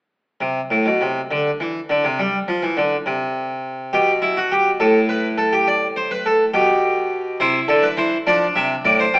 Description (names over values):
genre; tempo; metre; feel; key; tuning
classical, baroque-style 3-part fugue for harpsichord; 69 BPM (dotted quarters); 6/8; straight; unclear; A4 = 441 Hz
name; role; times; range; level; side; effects
harpsichord; solo; 0.4-9.2 s; A2 to G5; -16 LUFS; equal; none
room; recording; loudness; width
moderate recital hall reverb, RT60 1.6 s; AM radio sound; -16 LUFS; side -27 dB against mid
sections
0.4-9.2 A section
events
none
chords
0.4 N.C.; 3.9 G/B; 4.8 Asus2; 5.7 D5/A; 6.5 G/B; 7.4 C; 8.3 Dm7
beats
| 0.41 1.30 | 2.18 3.06 | 3.93 4.80 | 5.67 6.54 | 7.39 8.26 | 9.14